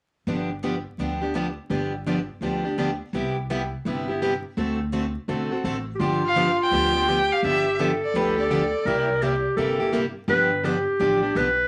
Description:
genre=acoustic string swing (jazz manouche)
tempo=168 BPM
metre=4/4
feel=swing 63% on 8ths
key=G mixolydian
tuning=A4 = 441 Hz
part: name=picked plugged-in steel-string acoustic guitar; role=accompaniment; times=0.3-11.5 s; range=C3 to A4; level=-29 LUFS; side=equal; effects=none
part: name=picked steel-string acoustic guitar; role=accompaniment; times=0.3-11.5 s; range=C3 to A4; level=-34 LUFS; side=equal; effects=none
part: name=upright bass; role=bass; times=0.3-11.7 s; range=G1 to D2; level=-34 LUFS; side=equal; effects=none
part: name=clear clarinet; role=second line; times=6.0-11.7 s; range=F4 to B4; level=-25 LUFS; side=equal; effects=none
part: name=warm violin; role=melody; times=6.3-9.4 s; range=B4 to G5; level=-27 LUFS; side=equal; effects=none
room=wet studio reverb, RT60 0.6 s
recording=vinyl crackle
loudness=-24 LUFS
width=mono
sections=0.3-6.0 A section; 6.0-11.7 B section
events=none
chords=0.3 G7; 3.1 Cmaj7; 4.6 D7; 6.0 G7; 8.9 C7; 10.3 G7

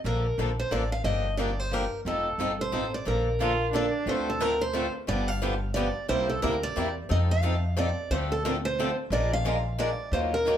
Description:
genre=acoustic string swing (jazz manouche)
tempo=179 BPM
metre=3/4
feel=swing 62% on 8ths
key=Bb major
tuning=A4 = 439 Hz
part: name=picked swing-style acoustic guitar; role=accompaniment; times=0.0-10.6 s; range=C3 to Bb4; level=-33 LUFS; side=right 3 dB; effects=none
part: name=upright bass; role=bass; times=0.0-10.6 s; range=F1 to F2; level=-30 LUFS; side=equal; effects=none
part: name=picked steel-string acoustic guitar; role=melody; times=0.1-10.6 s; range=A4 to F5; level=-30 LUFS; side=right 1 dB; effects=plate reverb
part: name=picked swing-style acoustic guitar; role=accompaniment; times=0.1-10.6 s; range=C3 to Bb4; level=-32 LUFS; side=left 4 dB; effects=none
part: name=warm violin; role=second line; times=3.4-4.0 s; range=D4 to F4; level=-30 LUFS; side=right 3 dB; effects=none
room=wet club reverb, RT60 0.7 s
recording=heard from further back in the room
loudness=-25 LUFS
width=side -10 dB against mid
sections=0.0-4.1 A section; 4.1-10.6 B section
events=none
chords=0.0 Bbmaj7; 1.0 Gm7; 2.1 F9; 3.1 Bbmaj7; 4.1 Dm7; 5.1 G7; 6.1 C7; 7.1 F7; 8.1 Dm7; 9.1 Bb7

